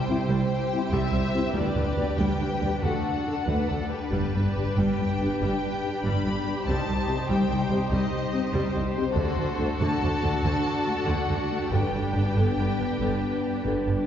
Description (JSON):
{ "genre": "cinematic, heroic adventure film score", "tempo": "94 BPM (dotted quarters)", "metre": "12/8", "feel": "straight", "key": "G major", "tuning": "A4 = 440 Hz", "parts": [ { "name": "warm symphonic violin section", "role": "melody", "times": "0.0-13.7 s", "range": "B4 to B5", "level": "-33 LUFS", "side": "left 4 dB", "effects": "none" }, { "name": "warm studio violin section", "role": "second line", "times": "0.0-14.1 s", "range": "F#4 to C5", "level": "-32 LUFS", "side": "equal", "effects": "none" }, { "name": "rich studio viola section", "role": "accompaniment", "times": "0.0-14.1 s", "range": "D3 to E4", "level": "-31 LUFS", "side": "left 1 dB", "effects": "none" }, { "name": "mellow French horn section", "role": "sustained chords", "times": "0.1-14.1 s", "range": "A3 to A4", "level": "-33 LUFS", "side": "left 3 dB", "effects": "none" }, { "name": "rich symphonic cello section", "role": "bass", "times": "0.1-14.0 s", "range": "C2 to G2", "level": "-30 LUFS", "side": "right 1 dB", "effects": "none" }, { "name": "rich symphonic double bass section", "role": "bass", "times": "0.1-13.9 s", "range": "G1 to D2", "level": "-30 LUFS", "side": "right 1 dB", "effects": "none" }, { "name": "timpani", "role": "percussion", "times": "2.8-4.7, 11.7-12.3 s", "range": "G2 to D3", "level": "-34 LUFS", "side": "left 1 dB", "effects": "none" }, { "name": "mellow clarinet", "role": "second line", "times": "13.6-14.1 s", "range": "B4", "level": "-32 LUFS", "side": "right 4 dB", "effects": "none" } ], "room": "wet concert hall reverb, RT60 2.1 s", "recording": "heard from further back in the room, nothing above 7.5 kHz", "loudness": "-23 LUFS", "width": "side -9 dB against mid", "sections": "0.0-14.1 A section", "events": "none", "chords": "0.0 C; 1.5 G/D; 2.8 D; 4.1 G; 6.7 Cm; 9.2 D7; 11.7 G", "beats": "0.29 0.92 | 1.55 2.20 2.84 3.48 | 4.13 4.78 5.41 6.04 | 6.67 7.29 7.92 8.54 | 9.17 9.81 10.44 11.07 | 11.71 12.36 13.01 13.65" }